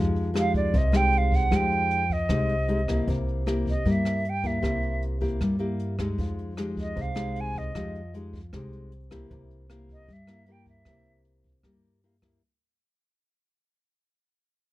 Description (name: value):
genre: bossa nova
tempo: 154 BPM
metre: 4/4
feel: straight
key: F minor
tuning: A4 = 442 Hz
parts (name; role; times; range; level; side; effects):
- nylon-string guitar; accompaniment; 0.0-12.4 s; C3 to G4; -29 LUFS; left 2 dB; none
- upright bass; bass; 0.0-12.4 s; C2 to G2; -28 LUFS; equal; none
- jazz brush drum kit; drums; 0.2-12.3 s; hi-hat, kick drum, rim click; -33 LUFS; right 1 dB; none
- concert flute; melody; 0.4-11.2 s; D5 to Ab5; -28 LUFS; right 3 dB; none
room: little or no reverb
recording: close, detailed microphones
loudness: -24 LUFS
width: side -16 dB against mid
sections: 0.0-12.4 A section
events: fade-out 0.0-12.4; flute solo 0.0-12.4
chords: 0.0 Fm9; 3.1 C7; 6.2 Fm9; 9.3 C7